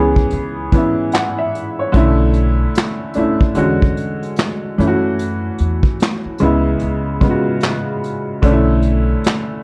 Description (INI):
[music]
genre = lo-fi hip hop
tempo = 74 BPM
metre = 4/4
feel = swing 61% on 16ths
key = B dorian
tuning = A4 = 439 Hz
[part]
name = warm upright piano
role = accompaniment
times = 0.0-9.6 s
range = C#3 to F#5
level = -19 LUFS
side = equal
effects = low-pass filter, plate reverb
[part]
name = upright bass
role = bass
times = 0.0-9.1 s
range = B1 to F#2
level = -21 LUFS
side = equal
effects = none
[part]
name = vintage brush drum kit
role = drums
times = 0.2-9.5 s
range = handclaps, hi-hat, kick drum, snare drum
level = -19 LUFS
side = equal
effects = none
[sound]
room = moderate studio reverb, RT60 0.5 s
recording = none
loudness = -16 LUFS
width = mono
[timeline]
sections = 0.0-9.6 A section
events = none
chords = 0.0 C#m7; 1.9 Bm11; 3.6 E13; 4.8 F#m7; 6.4 C#m7; 8.4 Bm11